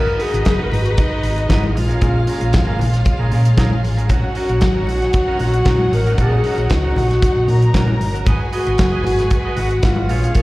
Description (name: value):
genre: disco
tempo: 115 BPM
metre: 4/4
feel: straight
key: Eb minor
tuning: A4 = 440 Hz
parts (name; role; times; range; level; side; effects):
- mellow wooden-headed alto flute; melody; 0.0-10.4 s; Eb4 to Bb4; -21 LUFS; left 1 dB; slapback echo
- warm symphonic violin section; second line; 0.0-10.4 s; Eb4 to Bb5; -27 LUFS; equal; slapback echo
- clean electric guitar; accompaniment; 0.0-10.4 s; Db4 to Eb5; -28 LUFS; right 4 dB; slapback echo
- rich studio string section; sustained chords; 0.0-10.4 s; Gb3 to Cb5; -28 LUFS; equal; none
- hollow-body short-scale fingered electric bass; bass; 0.0-10.4 s; Gb1 to Bb2; -17 LUFS; equal; none
- damped 70s drum kit; drums; 0.2-10.4 s; hi-hat, kick drum, snare drum; -18 LUFS; equal; none
- congas; percussion; 0.5-10.4 s; none; -26 LUFS; left 3 dB; slapback echo
room: light reverb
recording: live gig heard through the venue's PA, recital hall reverb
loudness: -14 LUFS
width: side -19 dB against mid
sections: 0.0-10.4 A section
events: none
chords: 0.0 Abm7; 1.8 Bbm7; 4.1 Ebm7; 8.3 Abm7